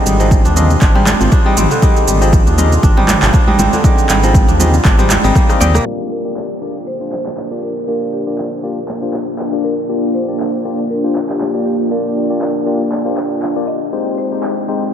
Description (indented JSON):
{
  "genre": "afro house",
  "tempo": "119 BPM",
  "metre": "4/4",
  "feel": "swing 55% on 16ths",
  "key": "G phrygian",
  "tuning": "A4 = 440 Hz",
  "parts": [
    { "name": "dark analog pad", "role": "sustained chords", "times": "0.0-14.9 s", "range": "Ab3 to Eb6", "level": "-21 LUFS", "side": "left 1 dB", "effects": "chorus, vintage 12-bit sampler grit, sidechain pumping" },
    { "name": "kora", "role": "arpeggios", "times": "0.0-7.7 s", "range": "D3 to G4", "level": "-18 LUFS", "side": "right 1 dB", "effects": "sidechain pumping, tape echo" },
    { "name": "barky tine electric piano", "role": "stabs", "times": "0.0-14.8 s", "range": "Ab3 to Eb5", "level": "-20 LUFS", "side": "moving between left 7 dB and right 1 dB", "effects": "auto-pan, sidechain pumping, tape echo" },
    { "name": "round analog bass", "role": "bass", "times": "0.1-5.8 s", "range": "Ab1 to Eb2", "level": "-14 LUFS", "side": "equal", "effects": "sidechain pumping" },
    { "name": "deep house drum kit", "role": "drums", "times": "0.1-14.9 s", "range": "handclaps, rim click, shaker, toms", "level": "-21 LUFS", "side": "right 2 dB", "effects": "overdrive, studio reverb" },
    { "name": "congas", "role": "percussion", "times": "0.2-5.7 s", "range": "none", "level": "-22 LUFS", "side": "equal", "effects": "none" },
    { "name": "electronic kick drum", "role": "drums", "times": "0.3-5.5 s", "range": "none", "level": "-12 LUFS", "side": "equal", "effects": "overdrive, studio reverb" },
    { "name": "buzzing marimba with medium hard mallets", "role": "melody", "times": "5.6-14.6 s", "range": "G4 to Eb5", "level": "-24 LUFS", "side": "right 1 dB", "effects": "tape echo" },
    { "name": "downlifter", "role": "sound effects", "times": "6.2-9.9 s", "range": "none", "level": "-44 LUFS", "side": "equal", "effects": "none" }
  ],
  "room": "moderate huge ambient reverb, RT60 6.5 s",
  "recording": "dreamy mix soaked in reverb, low-pass filter",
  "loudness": "-12 LUFS",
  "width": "side -9 dB against mid",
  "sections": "0.0-5.9 A section; 5.9-14.9 B section",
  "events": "drum fill 5.4-5.9; filter sweep 5.9-14.9",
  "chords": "0.0 Abmaj7; 5.9 Gm7; 13.9 Abmaj7",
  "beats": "0.31 0.82 1.32 | 1.82 2.33 2.83 3.34 | 3.84 4.35 4.85 5.36 | 5.86 6.36 6.87 7.37 | 7.88 8.38 8.88 9.39 | 9.89 10.40 10.90 11.40 | 11.91 12.41 12.92 13.42 | 13.93 14.43 14.93"
}